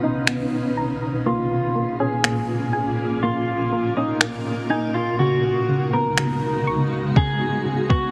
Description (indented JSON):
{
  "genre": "hip hop, atmospheric cloud-rap",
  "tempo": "122 BPM",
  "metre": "4/4",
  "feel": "half-time",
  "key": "unclear",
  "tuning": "A4 = 441 Hz",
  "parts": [
    { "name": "electric guitar at the edge of break-up", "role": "melody", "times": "0.0-8.1 s", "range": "D#4 to A#4", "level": "-27 LUFS", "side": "equal", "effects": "analog chorus, low-pass filter, delay" },
    { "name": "granular cloud pad", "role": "sustained chords", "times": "0.0-8.1 s", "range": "A#2 to B4", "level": "-26 LUFS", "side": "equal", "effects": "built-in reverb, sidechain pumping, low-pass filter" },
    { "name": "soft round pluck", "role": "arpeggios", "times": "0.0-8.1 s", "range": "C#3 to C#6", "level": "-29 LUFS", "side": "equal", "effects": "chorus, low-pass filter, delay" },
    { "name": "smooth R&B drum kit", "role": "drums", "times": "0.3-8.0 s", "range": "finger snaps, kick drum", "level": "-22 LUFS", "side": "equal", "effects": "vintage 12-bit sampler grit" }
  ],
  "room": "moderate shimmer reverb, RT60 4.0 s",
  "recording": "heavily compressed radio sound, multiband compression",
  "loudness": "-22 LUFS",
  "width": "mono",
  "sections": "0.0-8.1 A section",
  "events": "filter sweep 0.0-8.1",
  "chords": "0.0 Bmaj7; 1.3 A#m7; 5.2 C#7sus4"
}